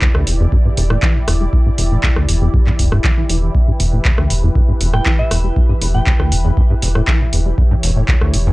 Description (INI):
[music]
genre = acid house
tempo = 119 BPM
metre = 4/4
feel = straight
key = E dorian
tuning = A4 = 440 Hz
[part]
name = lush unison pad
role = sustained chords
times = 0.0-8.5 s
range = E3 to D5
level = -25 LUFS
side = equal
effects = chorus, phaser, sidechain pumping
[part]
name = deep acid bass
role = riff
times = 0.0-8.5 s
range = E1 to G3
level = -18 LUFS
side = equal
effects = tube saturation, ensemble chorus, sidechain pumping, tape echo
[part]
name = electro analog drum machine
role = drums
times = 0.0-8.4 s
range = handclaps, hi-hat, rim click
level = -21 LUFS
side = equal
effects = none
[part]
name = electronic kick drum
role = drums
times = 0.0-8.2 s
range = none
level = -15 LUFS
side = equal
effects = none
[part]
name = round analog bass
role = bass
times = 0.3-8.5 s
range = D1 to E1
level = -17 LUFS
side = equal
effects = tube saturation, sidechain pumping
[part]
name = soft synth bell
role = melody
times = 4.9-6.4 s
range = E5 to G5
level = -26 LUFS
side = right 1 dB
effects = chorus, tape echo
[sound]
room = little or no reverb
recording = dry, gritty hardware recording, transformer saturation, cassette tape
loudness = -12 LUFS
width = side -20 dB against mid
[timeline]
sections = 0.0-8.5 A section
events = filter sweep on acid bass 0.0-8.5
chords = 0.0 Em